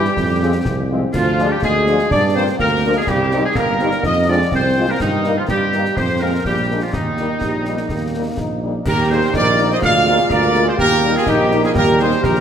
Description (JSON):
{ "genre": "military-style march for wind band", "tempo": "124 BPM", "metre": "2/4", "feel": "straight", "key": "Eb major", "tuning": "A4 = 440 Hz", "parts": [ { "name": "clear trumpet section", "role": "melody", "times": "0.0-12.4 s", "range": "Eb4 to F5", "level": "-22 LUFS", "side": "equal", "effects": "none" }, { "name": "bright woodwind section", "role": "second line", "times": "0.0-12.4 s", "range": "Eb4 to F5", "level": "-21 LUFS", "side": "left 1 dB", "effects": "none" }, { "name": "clear euphonium", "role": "second line", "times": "0.0-12.4 s", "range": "Eb3 to G4", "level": "-22 LUFS", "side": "right 3 dB", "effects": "none" }, { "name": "warm French horn section", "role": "accompaniment", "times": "0.0-12.1 s", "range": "F3 to F4", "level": "-26 LUFS", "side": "left 4 dB", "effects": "none" }, { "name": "mellow tuba", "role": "bass", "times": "0.0-12.4 s", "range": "G1 to G2", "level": "-20 LUFS", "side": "right 2 dB", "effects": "none" }, { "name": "concert snare drum, concert bass drum and clash cymbals", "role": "drums", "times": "0.0-12.4 s", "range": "none", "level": "-26 LUFS", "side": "left 1 dB", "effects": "none" }, { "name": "dark trombone section", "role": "sustained chords", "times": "0.4-12.4 s", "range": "Eb3 to Eb4", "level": "-26 LUFS", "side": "left 1 dB", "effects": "none" }, { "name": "flute section", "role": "second line", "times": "8.9-12.4 s", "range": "Eb4 to D5", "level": "-23 LUFS", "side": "left 2 dB", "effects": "none" } ], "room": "wet scoring stage reverb, RT60 1.7 s", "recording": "none", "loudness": "-14 LUFS", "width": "side -8 dB against mid", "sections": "0.0-8.9 A section; 8.9-12.4 B section", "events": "none", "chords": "0.2 Fm; 1.1 Ddim; 2.1 Gm7; 3.1 Cm7; 4.0 Fm; 5.0 Eb/G; 6.0 Fm; 6.5 Bb7; 6.9 Eb; 9.8 Bb7/D; 10.8 Eb" }